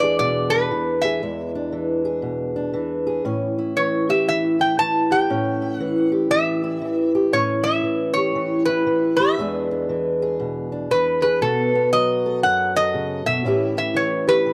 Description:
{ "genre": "acoustic country blues, solo or duo", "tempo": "118 BPM", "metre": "4/4", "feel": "swing 63% on 8ths", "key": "E mixolydian", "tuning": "A4 = 440 Hz", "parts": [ { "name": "metal-body resonator slide guitar", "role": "melody", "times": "0.0-14.5 s", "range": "A4 to A5", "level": "-23 LUFS", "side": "equal", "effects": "none" }, { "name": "fingerpicked old ladder-braced acoustic guitar", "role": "accompaniment", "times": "0.0-14.5 s", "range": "E2 to A4", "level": "-23 LUFS", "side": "equal", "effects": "none" } ], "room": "little or no reverb", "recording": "dry, close 1970s-style studio recording", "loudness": "-21 LUFS", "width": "mono", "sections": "0.0-14.5 A section", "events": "none", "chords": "0.0 E7; 3.3 A7; 9.4 E7; 11.4 B7; 13.5 A7" }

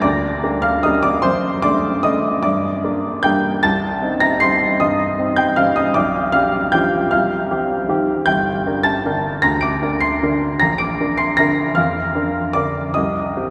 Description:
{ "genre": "classical, piano waltz", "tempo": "153 BPM", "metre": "3/4", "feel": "uneven beats, rubato", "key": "G minor", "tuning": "A4 = 437 Hz", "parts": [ { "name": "warm upright piano", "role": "solo", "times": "0.0-13.5 s", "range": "G1 to D7", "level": "-18 LUFS", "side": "equal", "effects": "none" } ], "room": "wet cathedral reverb, RT60 5.6 s", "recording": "heard from further back in the room", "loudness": "-18 LUFS", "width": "mono", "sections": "0.0-13.5 A section", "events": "none", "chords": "0.0 Gm; 1.2 D7/F#; 2.5 Gm; 3.6 Cm; 6.0 G7/B; 7.1 Cm; 8.3 Gm; 10.6 Bb; 13.0 Cm" }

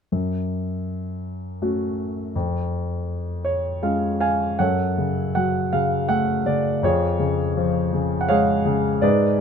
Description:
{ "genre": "classical, lyrical solo piano", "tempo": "81 BPM", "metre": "3/4", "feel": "rubato", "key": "F# harmonic minor", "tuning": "A4 = 440 Hz", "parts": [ { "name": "warm grand piano", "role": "solo", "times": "0.1-9.4 s", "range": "E#2 to G#5", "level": "-20 LUFS", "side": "equal", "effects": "none" } ], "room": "light reverb", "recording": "close, detailed microphones", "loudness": "-20 LUFS", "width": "side -7 dB against mid", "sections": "0.1-4.6 A section; 4.6-9.4 B section", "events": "grand piano fill 3.1-4.6", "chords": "0.1 F#m; 2.3 C#/E#; 4.6 F#m; 6.8 C#/E#" }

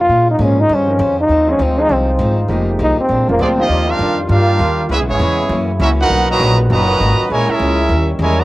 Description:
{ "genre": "jazz, big band swing", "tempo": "200 BPM", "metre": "4/4", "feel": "swing 62% on 8ths", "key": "unclear", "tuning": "A4 = 441 Hz", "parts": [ { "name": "mellow trombone", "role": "melody", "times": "0.0-3.7 s", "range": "Bb3 to F4", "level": "-14 LUFS", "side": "equal", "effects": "cassette tape" }, { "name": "clear trombone section", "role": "sustained chords", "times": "0.0-8.4 s", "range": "C3 to C5", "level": "-25 LUFS", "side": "left 1 dB", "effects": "none" }, { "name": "upright bass", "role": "bass", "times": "0.0-8.4 s", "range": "F1 to Bb2", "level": "-16 LUFS", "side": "equal", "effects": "transformer saturation" }, { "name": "picked steel-string acoustic guitar", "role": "accompaniment", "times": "0.1-8.4 s", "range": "Gb2 to C5", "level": "-24 LUFS", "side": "left 3 dB", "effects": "cassette tape" }, { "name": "warm baby grand piano", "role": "accompaniment", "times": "0.4-4.0 s", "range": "F3 to Bb4", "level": "-22 LUFS", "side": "right 1 dB", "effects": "cassette tape" }, { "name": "clear trumpet section", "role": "melody", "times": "3.4-8.4 s", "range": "Bb3 to A#5", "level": "-17 LUFS", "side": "right 1 dB", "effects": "cassette tape" }, { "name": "bright trombone section", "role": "second line", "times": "3.4-8.4 s", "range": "Bb2 to Gb4", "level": "-20 LUFS", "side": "right 2 dB", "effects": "cassette tape" } ], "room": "light reverb", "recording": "home recording on cassette", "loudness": "-12 LUFS", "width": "side -18 dB against mid", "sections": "0.0-3.7 A section; 3.7-8.4 B section", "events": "trombone solo 0.0-3.7", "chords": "0.1 Bbm7; 0.7 Eb13; 1.3 Ab6; 2.5 Fm11; 3.1 Bb9; 3.7 Ebmaj9; 4.9 Dbm7; 5.5 Gb7; 6.1 Bmaj7; 7.3 Bbm7b5; 7.9 Eb7b9" }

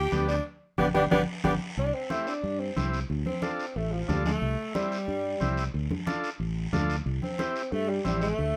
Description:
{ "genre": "latin, cumbia", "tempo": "182 BPM", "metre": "4/4", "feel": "straight", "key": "unclear", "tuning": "A4 = 441 Hz", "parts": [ { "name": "warm saxophone section", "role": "melody", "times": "0.0-8.6 s", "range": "F3 to G4", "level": "-32 LUFS", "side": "equal", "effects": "none" }, { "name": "fingered electric bass", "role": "bass", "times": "0.0-8.5 s", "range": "G1 to G2", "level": "-33 LUFS", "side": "equal", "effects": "none" }, { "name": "overdriven combo organ", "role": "accompaniment", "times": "0.1-8.3 s", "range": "B3 to A4", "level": "-35 LUFS", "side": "equal", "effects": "none" }, { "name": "congas", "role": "percussion", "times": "0.1-8.5 s", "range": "none", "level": "-34 LUFS", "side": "equal", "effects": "none" }, { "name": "guiro", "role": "percussion", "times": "0.1-8.6 s", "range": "none", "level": "-45 LUFS", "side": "equal", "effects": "none" } ], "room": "moderate studio reverb, RT60 0.6 s", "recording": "none", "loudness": "-29 LUFS", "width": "mono", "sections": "0.0-1.8 A section; 1.8-8.6 B section", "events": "band accent 0.5-1.8; saxophone section solo 1.8-8.6", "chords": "0.0 G; 1.8 C; 3.1 Dm; 4.4 C; 5.7 Dm; 7.1 C" }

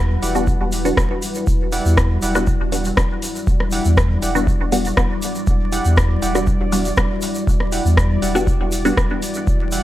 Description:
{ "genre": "dub techno", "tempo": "120 BPM", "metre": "4/4", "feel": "straight", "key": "E minor", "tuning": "A4 = 438 Hz", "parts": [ { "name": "deep dark ambient pad", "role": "sustained chords", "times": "0.0-9.8 s", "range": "G3 to F#5", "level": "-25 LUFS", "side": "left 1 dB", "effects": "chorus, built-in reverb, sidechain pumping" }, { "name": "soft dub sub bass", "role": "bass", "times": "0.0-9.8 s", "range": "D1 to E2", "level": "-21 LUFS", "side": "equal", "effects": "sidechain pumping" }, { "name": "bubbling stepped-filter texture", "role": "texture", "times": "0.1-9.8 s", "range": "B4 to D5", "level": "-34 LUFS", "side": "left 1 dB", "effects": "chorus, built-in reverb, sidechain pumping" }, { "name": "warbly lo-fi synth keys", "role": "riff", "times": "0.2-9.8 s", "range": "E4 to F#5", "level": "-28 LUFS", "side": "right 3 dB", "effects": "chorus, sidechain pumping, dub echo" }, { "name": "booming analog drum machine", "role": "drums", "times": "0.2-9.8 s", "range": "hi-hat, rim click", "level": "-24 LUFS", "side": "equal", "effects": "overdrive" }, { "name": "tube shaker", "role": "percussion", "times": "0.2-9.8 s", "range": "none", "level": "-31 LUFS", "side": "equal", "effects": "none" }, { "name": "filtered dub chord stab", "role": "stabs", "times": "0.4-9.1 s", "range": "G3 to F#4", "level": "-22 LUFS", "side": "equal", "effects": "phaser, sidechain pumping, dub echo" }, { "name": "electronic kick drum", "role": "drums", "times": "0.5-9.6 s", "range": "none", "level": "-19 LUFS", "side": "equal", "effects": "overdrive" } ], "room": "digital ambience", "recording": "vinyl crackle", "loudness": "-16 LUFS", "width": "side -14 dB against mid", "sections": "0.0-9.8 A section", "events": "none", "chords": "0.0 Em9" }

